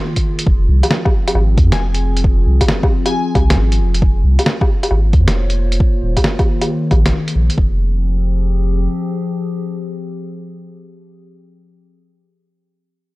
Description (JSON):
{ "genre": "future garage", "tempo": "135 BPM", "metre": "4/4", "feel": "swing 66% on 16ths", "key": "F minor", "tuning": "A4 = 441 Hz", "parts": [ { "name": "warbly tape-like pad", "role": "sustained chords", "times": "0.0-11.7 s", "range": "Eb3 to Db5", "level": "-23 LUFS", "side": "left 1 dB", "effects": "chorus, built-in reverb, sidechain pumping" }, { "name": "electronic kick drum", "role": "drums", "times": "0.2-7.7 s", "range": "none", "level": "-15 LUFS", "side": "equal", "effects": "overdrive" }, { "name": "lo-fi sampler-style drum kit", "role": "drums", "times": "0.2-7.6 s", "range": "hi-hat, snare drum, woodblock", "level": "-18 LUFS", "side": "equal", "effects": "none" }, { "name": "warm sub bass", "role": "bass", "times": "0.5-8.9 s", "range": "Eb1 to F2", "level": "-14 LUFS", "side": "equal", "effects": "sidechain pumping" }, { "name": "glassy wavetable pluck", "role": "melody", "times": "1.7-3.7 s", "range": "Ab5", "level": "-26 LUFS", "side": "left 3 dB", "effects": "chorus, analog delay" } ], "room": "light reverb", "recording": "dry, gritty hardware recording", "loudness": "-13 LUFS", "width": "side -20 dB against mid", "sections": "0.5-7.6 A section; 7.6-11.1 B section", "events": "none", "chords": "0.5 Fm; 4.0 Bbm9/F; 5.8 Eb9sus4; 7.6 Fmadd9" }